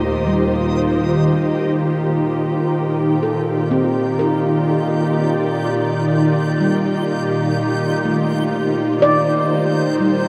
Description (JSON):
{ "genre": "ambient", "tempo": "62 BPM", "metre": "3/4", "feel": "straight", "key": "Eb lydian", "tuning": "A4 = 437 Hz", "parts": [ { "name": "ethereal airy pad", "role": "sustained chords", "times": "0.0-10.3 s", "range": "Eb3 to D5", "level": "-20 LUFS", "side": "equal", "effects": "ensemble chorus, built-in reverb" }, { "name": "handpan", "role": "arpeggios", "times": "0.0-10.3 s", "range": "G3 to D5", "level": "-24 LUFS", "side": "equal", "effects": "analog delay" }, { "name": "muted studio double bass section", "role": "bass", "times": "0.0-1.7 s", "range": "Eb2", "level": "-32 LUFS", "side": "equal", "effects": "none" }, { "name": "bowed-like drone", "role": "drone", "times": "0.0-10.3 s", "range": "Bb2 to Eb3", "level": "-27 LUFS", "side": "equal", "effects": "built-in reverb" }, { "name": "backwards swelling texture", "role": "texture", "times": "0.0-10.3 s", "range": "Eb5 to G6", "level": "-35 LUFS", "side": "equal", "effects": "built-in reverb" } ], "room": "wet huge ambient reverb, RT60 8.9 s", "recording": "dreamy mix soaked in reverb", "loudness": "-18 LUFS", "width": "mono", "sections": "0.0-1.8 A section; 1.8-10.3 B section", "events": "fade-in on synth texture 1.8-10.3", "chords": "0.0 Eb; 1.8 Ebmaj7" }